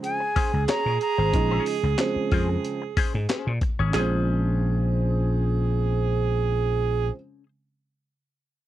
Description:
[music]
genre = funk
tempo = 92 BPM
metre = 4/4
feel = straight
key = Bb minor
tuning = A4 = 442 Hz
[part]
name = bright reedy silver concert flute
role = melody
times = 0.0-1.6 s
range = Ab5 to Bb5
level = -27 LUFS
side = left 1 dB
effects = none
[part]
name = warm tenor saxophone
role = second line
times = 0.0-7.1 s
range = Ab4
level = -28 LUFS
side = right 10 dB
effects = none
[part]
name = dark upright piano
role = stabs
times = 0.0-7.1 s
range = Db3 to Eb4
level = -31 LUFS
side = right 2 dB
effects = none
[part]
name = breakbeat sampler-style drum kit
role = drums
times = 0.0-4.1 s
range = handclaps, hi-hat, kick drum, snare drum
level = -27 LUFS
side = left 1 dB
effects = none
[part]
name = clean electric guitar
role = accompaniment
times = 0.2-7.5 s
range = Db4 to Db5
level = -33 LUFS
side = left 9 dB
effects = wah
[part]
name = vintage slap bass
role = bass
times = 0.4-7.1 s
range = Ab1 to Bb2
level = -24 LUFS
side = left 1 dB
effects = none
[sound]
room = little or no reverb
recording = dry, close 1970s-style studio recording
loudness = -22 LUFS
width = side -13 dB against mid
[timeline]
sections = 0.0-3.9 A section; 3.9-6.5 B section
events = none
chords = 0.0 Bbm9

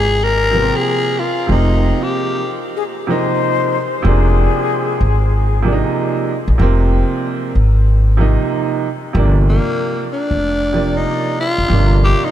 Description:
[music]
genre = hip hop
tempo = 94 BPM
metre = 4/4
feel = swing 63% on 16ths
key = unclear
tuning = A4 = 438 Hz
[part]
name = growling tenor saxophone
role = melody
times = 0.0-2.7, 9.5-12.3 s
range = Bb3 to Bb4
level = -18 LUFS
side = left 2 dB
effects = diffuse ambient delay
[part]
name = upright bass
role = bass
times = 0.0-12.1 s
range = F1 to Bb1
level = -14 LUFS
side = equal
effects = none
[part]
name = warm upright piano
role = accompaniment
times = 0.5-12.3 s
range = C3 to D5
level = -19 LUFS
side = right 4 dB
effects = wide subtle chorus
[part]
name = breathy mellow concert flute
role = second line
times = 2.8-5.3 s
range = Ab4 to C5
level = -21 LUFS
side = left 8 dB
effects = diffuse ambient delay
[sound]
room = light reverb, studio ambience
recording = none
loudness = -13 LUFS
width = side -11 dB against mid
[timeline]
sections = 0.0-9.1 A section; 9.1-12.3 B section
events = tenor saxophone solo 9.1-12.3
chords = 0.0 Fm11; 9.1 Gm7

